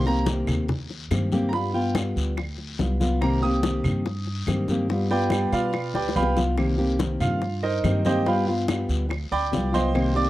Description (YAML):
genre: latin, Cuban son and guajira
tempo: 143 BPM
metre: 4/4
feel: straight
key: C minor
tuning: A4 = 441 Hz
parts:
  - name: fingerpicked steel-string acoustic guitar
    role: accompaniment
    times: 0.0-10.3 s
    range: C3 to G4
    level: -25 LUFS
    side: left 1 dB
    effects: none
  - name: bright baby grand piano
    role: arpeggios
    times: 0.0-10.3 s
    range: Eb4 to Eb6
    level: -27 LUFS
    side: right 3 dB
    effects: none
  - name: upright bass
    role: bass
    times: 0.0-10.3 s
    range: C2 to B2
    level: -27 LUFS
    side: equal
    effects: none
  - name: bongos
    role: percussion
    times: 0.1-10.3 s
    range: none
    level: -32 LUFS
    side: left 6 dB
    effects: none
  - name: congas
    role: percussion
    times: 0.1-10.3 s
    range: none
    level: -30 LUFS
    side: left 1 dB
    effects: none
  - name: guiro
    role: percussion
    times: 0.3-10.3 s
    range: none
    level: -40 LUFS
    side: left 6 dB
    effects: none
  - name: claves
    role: percussion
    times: 0.5-10.2 s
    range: none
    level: -40 LUFS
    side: right 5 dB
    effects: none
room: small room ambience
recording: dry, close 1970s-style studio recording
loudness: -22 LUFS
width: side -16 dB against mid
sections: 0.0-10.3 A section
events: grand piano solo 0.0-10.3; drum fill 6.0-6.6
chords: 0.0 Cm7; 1.5 G7; 3.2 Cm7; 4.9 G7; 6.6 Cm7; 8.3 G7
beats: 0.27 0.69 1.11 | 1.53 1.95 2.38 2.79 | 3.22 3.64 4.06 4.48 | 4.90 5.32 5.74 6.16 | 6.58 7.00 7.42 7.84 | 8.26 8.69 9.11 9.53 | 9.95